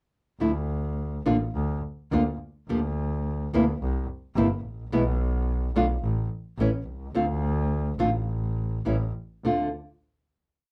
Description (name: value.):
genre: tango.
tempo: 107 BPM.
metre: 4/4.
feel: rubato.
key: D minor.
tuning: A4 = 440 Hz.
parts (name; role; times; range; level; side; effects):
nylon-string guitar; accompaniment; 0.4-9.7 s; B2 to G4; -26 LUFS; equal; none.
clear double bass; bass; 0.4-9.7 s; G1 to D2; -30 LUFS; equal; none.
room: moderate studio reverb, RT60 0.5 s.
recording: dark, warm production.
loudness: -27 LUFS.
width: mono.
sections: 0.4-9.4 A section; 9.4-10.7 final chord.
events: none.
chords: 0.4 Dm; 1.6 N.C.; 2.7 Gm/D (rootless); 3.8 C; 4.9 E5/B; 6.0 N.C.; 6.6 A; 7.2 D5; 8.9 A7; 9.4 Dm7.